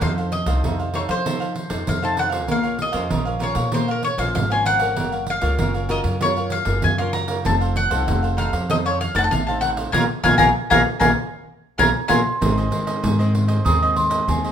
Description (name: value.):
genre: samba and choro.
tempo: 97 BPM.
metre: 4/4.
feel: straight.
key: Bb minor.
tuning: A4 = 444 Hz.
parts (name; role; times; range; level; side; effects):
bowl-back mandolin; melody; 0.0-12.2 s; Bb4 to C6; -21 LUFS; left 2 dB; none.
cavaquinho; accompaniment; 0.0-14.5 s; Eb4 to F5; -29 LUFS; right 5 dB; none.
nylon-string guitar; accompaniment; 0.0-14.5 s; Ab2 to C5; -27 LUFS; left 4 dB; none.
upright bass; bass; 0.0-14.5 s; F1 to F3; -24 LUFS; equal; none.
pandeiro; percussion; 0.0-14.5 s; none; -26 LUFS; right 4 dB; none.
large celesta; second line; 11.8-14.5 s; Ab5 to Eb6; -23 LUFS; right 1 dB; none.
room: moderate large studio reverb, RT60 1.0 s.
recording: minimal, uncompressed stereo recording.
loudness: -18 LUFS.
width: side -8 dB against mid.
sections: 0.0-12.4 A section; 12.4-14.5 B section.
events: band accent 9.9-12.4; celesta solo 12.4-14.5.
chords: 0.0 F7; 2.5 Bbmadd9; 5.0 Gbmaj7; 7.5 F7; 9.9 Bbm7; 12.4 Ab.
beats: | 0.01 0.63 1.25 1.87 | 2.49 3.11 3.73 4.35 | 4.97 5.59 6.21 6.83 | 7.46 8.08 8.70 9.32 | 9.94 10.56 11.18 11.80 | 12.42 13.04 13.66 14.28.